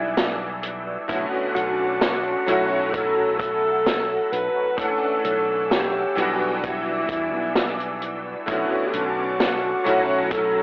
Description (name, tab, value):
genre	vaporwave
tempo	65 BPM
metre	4/4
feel	swing 53% on 16ths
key	B minor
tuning	A4 = 442 Hz
part	breathy alto saxophone	melody	0.0-10.6 s	E4 to B4	-24 LUFS	equal	tape echo
part	bright electric grand piano	accompaniment	0.0-10.6 s	D3 to F#5	-24 LUFS	equal	ensemble chorus
part	lush unison pad	sustained chords	0.0-10.6 s	C#4 to E6	-31 LUFS	equal	chorus, phaser
part	fingered electric bass	bass	0.0-10.6 s	B1 to E2	-37 LUFS	equal	none
part	vintage drum kit	drums	0.2-10.5 s	hi-hat, snare drum	-24 LUFS	equal	vintage 12-bit sampler grit, gated reverb
part	kick drum	drums	1.1-10.5 s	none	-34 LUFS	equal	vintage 12-bit sampler grit
room	moderate plate reverb, RT60 2.3 s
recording	cassette tape, telephone sound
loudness	-20 LUFS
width	side -26 dB against mid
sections	0.0-10.6 A section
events	none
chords	0.0 Em7/B; 1.1 Bm9; 2.5 F#m7/B; 4.8 Dmaj9; 6.2 Em7/B; 8.5 Bm9; 9.9 F#m7/B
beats	0.17 | 1.09 2.01 2.94 3.86 | 4.78 5.71 6.63 7.55 | 8.47 9.40 10.32